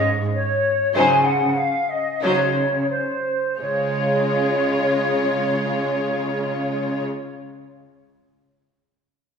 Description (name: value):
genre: classical, dramatic, fast romantic movement for symphony orchestra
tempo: 83-101 BPM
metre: 4/4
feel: rubato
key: Db major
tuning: A4 = 440 Hz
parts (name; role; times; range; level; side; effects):
- rich symphonic violin section; melody; 0.0-7.0 s; C5 to Db5; -28 LUFS; left 5 dB; none
- small flute group; second line; 0.0-7.0 s; C5 to Ab5; -21 LUFS; left 1 dB; none
- rich symphonic cello section; bass; 0.0-7.0 s; Ab2 to Db3; -26 LUFS; right 2 dB; none
- warm symphonic violin section; second line; 1.0-7.0 s; Eb4 to F4; -30 LUFS; left 2 dB; none
- clear symphonic viola section; accompaniment; 1.0-7.0 s; Gb3 to Ab3; -27 LUFS; right 2 dB; none
room: wet concert hall reverb, RT60 1.9 s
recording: minimal, uncompressed stereo recording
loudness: -18 LUFS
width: side -6 dB against mid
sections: 0.0-3.6 A section; 3.6-6.3 B section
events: slowing down 0.0-3.6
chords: 0.0 Db5; 1.0 Dbmaj7sus2; 3.6 Db